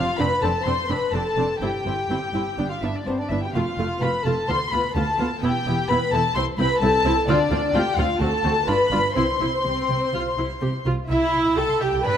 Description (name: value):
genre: quick classical-period movement for string orchestra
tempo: 127 BPM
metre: 4/4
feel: straight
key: C major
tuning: A4 = 440 Hz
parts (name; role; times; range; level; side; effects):
- warm studio violin section; melody; 0.0-12.1 s; C5 to C6; -25 LUFS; left 4 dB; none
- dark studio violin section; second line; 0.0-12.2 s; C4 to B5; -26 LUFS; left 2 dB; none
- rich studio viola section; accompaniment; 0.0-12.2 s; A3 to B4; -26 LUFS; right 2 dB; none
- dark symphonic double bass section; bass; 0.0-12.1 s; E1 to G2; -28 LUFS; right 2 dB; none
- warm studio cello section; bass; 0.0-12.2 s; C2 to D4; -29 LUFS; right 1 dB; none
room: moderate concert hall reverb, RT60 1.9 s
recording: none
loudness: -20 LUFS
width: side -9 dB against mid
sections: 0.0-11.1 A section; 11.1-12.2 B section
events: none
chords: 0.0 Dm7/F; 1.6 C/G; 2.6 G; 3.5 F; 4.5 Bdim/D; 5.4 Em; 6.4 Am/C; 7.3 Dm7; 8.2 D7; 8.7 G7; 9.2 C